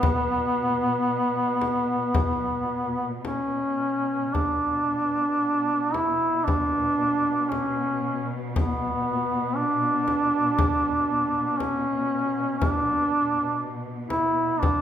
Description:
caucasian folk, Caucasian lament; 53-60 BPM; 4/4; rubato; B minor; A4 = 438 Hz
mellow duduk; melody; 0.0-14.8 s; B3 to E4; -23 LUFS; equal
warm studio string section; drone; 0.0-14.8 s; B2; -33 LUFS; left 1 dB
frame drum; percussion; 0.0-14.8 s; -28 LUFS; left 1 dB
moderate recital hall reverb, RT60 1.6 s; recorded in a church or concert hall; -22 LUFS; side -10 dB against mid
0.0-4.3 A section; 4.3-14.8 B section
| 0.03 1.08 2.14 3.24 | 4.35 5.42 6.47 7.52 | 8.56 9.57 10.59 11.61 | 12.61 13.61 14.62

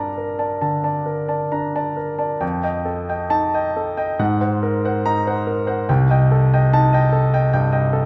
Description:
classical, impressionist solo piano; 66-76 BPM; 4/4; rubato; A4 = 440 Hz
clear concert grand piano; solo; 0.0-8.1 s; C2 to Bb5; -19 LUFS; equal
wet recital hall reverb, RT60 1.7 s; -19 LUFS; mono
0.0-8.1 A section
0.0 Gmadd9; 2.4 F9; 4.2 Ab9; 5.9 Cm6
0.62 1.52 | 2.42 3.31 4.20 5.05 | 5.88 6.73 7.52

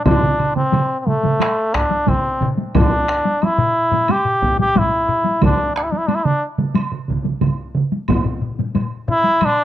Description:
japanese traditional, taiko drum ensemble; 90 BPM; 4/4; straight; D suspended pentatonic; A4 = 441 Hz
trombone with straight mute; melody; 0.0-9.6 s; A3 to G4; -17 LUFS; equal
taiko ensemble; percussion; 0.1-9.6 s; -21 LUFS; left 1 dB
taiko ensemble; percussion; 0.1-9.6 s; -24 LUFS; left 3 dB
taiko ensemble; percussion; 0.1-7.9 s; -20 LUFS; right 4 dB
taiko ensemble; percussion; 0.1-8.2 s; -20 LUFS; equal
woodblock; percussion; 0.1-9.6 s; -31 LUFS; right 6 dB
studio ambience; dry, close 1970s-style studio recording; -15 LUFS; side -12 dB against mid
0.0-9.6 A section
| 0.05 0.73 1.40 2.07 | 2.75 3.42 4.09 4.76 | 5.43 6.09 6.76 7.43 | 8.09 8.76 9.42

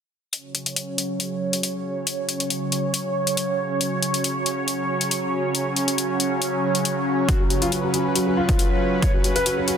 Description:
heavy wobble dubstep; 138 BPM; 4/4; half-time; A4 = 439 Hz
supersaw pad; sustained chords; 0.3-9.8 s; C#3 to C#5; -23 LUFS; right 1 dB; phaser, sidechain pumping, low-pass filter
electronic hi-hat; drums; 0.3-9.8 s; -24 LUFS; left 3 dB
dark grand piano; melody; 7.3-9.8 s; F#3 to C#5; -24 LUFS; left 2 dB; tape echo
electronic kick drum; drums; 7.3-9.1 s; -21 LUFS; equal; overdrive
moderate lush hall reverb, RT60 1.6 s, digital ambience; dense, heavily limited modern master; -20 LUFS; side -8 dB against mid
0.3-9.8 A section
filter sweep on supersaw synth 0.3-9.8
0.3 F#5
| 0.33 0.76 1.20 1.63 | 2.07 2.50 2.94 3.37 | 3.81 4.24 4.68 5.11 | 5.55 5.98 6.42 6.85 | 7.29 7.72 8.15 8.59 | 9.03 9.46

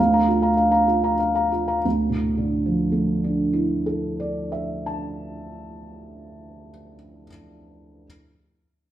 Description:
neoclassical minimalist piano; 91 BPM; 3/4; rubato; D minor; A4 = 439 Hz
felt-muted upright piano; solo; 0.0-8.1 s; D2 to Bb5; -20 LUFS; right 1 dB
wet large studio reverb, RT60 1.4 s; band playing live in one room; -20 LUFS; side -12 dB against mid
0.0-1.8 A section; 1.8-5.8 B section
slowing down 0.0-1.8
0.0 Bb/D; 1.8 Dmadd9
0.56 1.17 | 1.84 2.50 3.16 | 3.82 4.49 5.15

